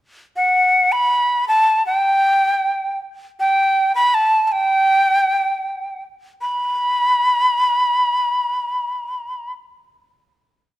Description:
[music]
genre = andean folk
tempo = free time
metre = none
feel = none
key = unclear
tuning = A4 = 436 Hz
[part]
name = breathy bright large quena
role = solo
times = 0.4-9.5 s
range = F#5 to B5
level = -15 LUFS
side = equal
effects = none
[sound]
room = moderate recital hall reverb, RT60 1.6 s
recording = none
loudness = -15 LUFS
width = side -15 dB against mid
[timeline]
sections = 0.4-6.4 A section; 6.4-9.4 final note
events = none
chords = none

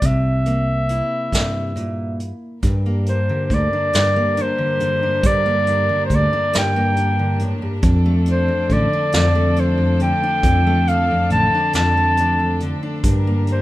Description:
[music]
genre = acoustic folk-pop ballad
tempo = 46 BPM (dotted quarters)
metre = 6/8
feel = straight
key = unclear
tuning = A4 = 441 Hz
[part]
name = clear clarinet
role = melody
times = 0.0-13.6 s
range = C5 to A5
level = -19 LUFS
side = equal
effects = none
[part]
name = fingerpicked steel-string acoustic guitar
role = accompaniment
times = 0.0-13.6 s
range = F2 to E4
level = -22 LUFS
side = equal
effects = none
[part]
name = fingered electric bass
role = bass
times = 0.0-13.6 s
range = A1 to G2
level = -20 LUFS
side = equal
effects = none
[part]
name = vintage brush drum kit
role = drums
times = 0.0-13.6 s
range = hi-hat, kick drum, snare drum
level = -21 LUFS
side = equal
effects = none
[part]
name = warm chamber string section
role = sustained chords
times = 2.6-13.6 s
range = F3 to Bb4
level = -29 LUFS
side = equal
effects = none
[sound]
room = light reverb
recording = minimal, uncompressed stereo recording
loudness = -16 LUFS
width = side -16 dB against mid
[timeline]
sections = 0.0-2.6 A section; 2.6-13.6 B section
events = none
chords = 0.0 C7; 2.6 Gm; 7.8 Dm; 13.0 Gm

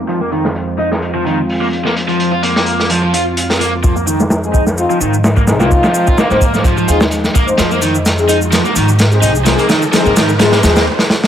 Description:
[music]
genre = breakbeat, breaks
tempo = 128 BPM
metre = 4/4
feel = swing 54% on 16ths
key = F minor pentatonic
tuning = A4 = 441 Hz
[part]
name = phased analog pad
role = sustained chords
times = 0.0-10.8 s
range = F2 to F4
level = -21 LUFS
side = equal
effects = phaser, chorus, sidechain pumping
[part]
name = downlifter, swell and riser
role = sound effects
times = 3.1-10.9 s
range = none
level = -25 LUFS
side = right 1 dB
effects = none
[part]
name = raw garage guitar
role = riff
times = 0.1-10.8 s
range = Eb3 to F4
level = -16 LUFS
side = right 1 dB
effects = overdrive, low-pass filter, digital delay
[part]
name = crunchy breakbeat drum kit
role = drums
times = 0.1-11.3 s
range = hi-hat, kick drum, snare drum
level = -15 LUFS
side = equal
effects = high-pass filter on kick, low-pass filter on kick, high-pass filter on hats, low-pass filter on hats, high-pass filter on snare, low-pass filter on snare, high-pass filter on room, low-pass filter on room
[part]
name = upright bass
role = bass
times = 3.8-10.9 s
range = C2 to Ab2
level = -17 LUFS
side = equal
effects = low-pass filter
[part]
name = shaker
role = drums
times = 3.8-10.8 s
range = none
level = -24 LUFS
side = equal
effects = none
[part]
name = mellow brass ensemble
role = stabs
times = 4.4-10.8 s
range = C4 to C5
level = -17 LUFS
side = left 2 dB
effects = low-pass filter, digital delay
[sound]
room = light reverb, studio ambience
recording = low-pass filter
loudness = -10 LUFS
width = side -10 dB against mid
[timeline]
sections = 0.0-3.8 A section; 3.8-11.3 B section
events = filter sweep on overdriven electric guitar 0.0-3.8, 3.8-11.3; filter sweep 0.0-3.8; swell 3.1-3.8; build-up 3.8-11.3; riser 3.8-10.9; filter sweep on drum 3.8-11.3; drum fill 7.6-10.9, 11.0; stop 10.9-11.3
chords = 0.0 Fm; 3.8 Fm7

